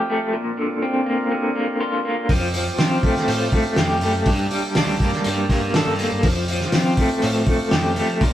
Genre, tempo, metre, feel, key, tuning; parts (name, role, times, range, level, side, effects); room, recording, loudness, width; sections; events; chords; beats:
psychedelic rock; 122 BPM; 4/4; straight; A4 = 441 Hz
hand-pumped harmonium; sustained chords; 0.0-8.3 s; Bb3 to G5; -31 LUFS; right 4 dB
electric guitar through a small old amp; riff; 0.0-8.3 s; G2 to A4; -21 LUFS; left 1 dB; tremolo
fuzz picked electric bass; bass; 2.3-8.3 s; Bb1 to F3; -25 LUFS; equal; overdrive
cloth-damped thuddy drum kit; drums; 2.3-8.3 s; hi-hat, kick drum, snare drum; -21 LUFS; equal
light reverb; band playing live in one room; -18 LUFS; side -12 dB against mid
0.0-8.3 A section
0.3 Bbadd9; 2.3 Fadd9; 4.3 Gmadd9; 6.2 Fadd9
| 0.32 0.81 1.31 1.80 | 2.29 2.79 3.28 3.77 | 4.26 4.76 5.25 5.75 | 6.24 6.73 7.22 7.72 | 8.21